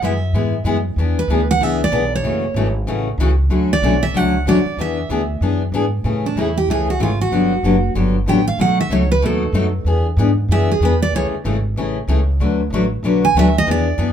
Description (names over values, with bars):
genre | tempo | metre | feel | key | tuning
acoustic string swing (jazz manouche) | 189 BPM | 4/4 | swing 59% on 8ths | A major | A4 = 436 Hz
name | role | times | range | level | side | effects
picked steel-string acoustic guitar | melody | 0.0-14.1 s | D4 to G#5 | -20 LUFS | right 4 dB | none
picked steel-string acoustic guitar | accompaniment | 0.0-14.1 s | B2 to B4 | -19 LUFS | left 3 dB | none
upright bass | bass | 0.0-14.1 s | F#1 to A2 | -19 LUFS | equal | none
room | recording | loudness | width
moderate club reverb, RT60 0.6 s | minimal, uncompressed stereo recording | -15 LUFS | side -9 dB against mid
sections
0.0-6.0 A section; 6.0-14.1 B section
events
steel-string acoustic guitar solo 6.0-14.1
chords
0.0 E; 1.0 E7; 2.2 F#m7; 3.5 Dmaj7; 4.8 E7; 6.0 Amaj7; 7.3 Gmaj7; 8.6 B7; 9.9 E7; 11.1 Amaj7; 12.4 D6